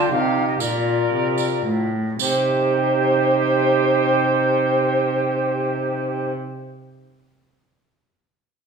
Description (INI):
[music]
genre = classical, renaissance-style consort dance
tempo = 107-125 BPM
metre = 3/4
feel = straight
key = C dorian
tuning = A4 = 440 Hz
[part]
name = mellow alto recorder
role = melody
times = 0.0-6.3 s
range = C5 to G5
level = -21 LUFS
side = equal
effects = none
[part]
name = mellow cor anglais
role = second line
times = 0.0-6.3 s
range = G4 to Bb4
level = -24 LUFS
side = right 5 dB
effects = none
[part]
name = clear trombone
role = accompaniment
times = 0.0-6.3 s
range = Eb4 to F4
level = -26 LUFS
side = equal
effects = none
[part]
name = warm cello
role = bass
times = 0.0-6.3 s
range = A2 to D3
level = -24 LUFS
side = right 1 dB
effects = none
[part]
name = tambourine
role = percussion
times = 0.6-2.5 s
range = none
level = -28 LUFS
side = right 6 dB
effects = none
[sound]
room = moderate recital hall reverb, RT60 1.4 s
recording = small room reverb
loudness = -18 LUFS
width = side -5 dB against mid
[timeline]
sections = 0.0-2.2 A section; 2.2-5.6 B section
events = slowing down 0.0-2.2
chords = 0.0 Cm; 0.6 Bb; 2.2 Cm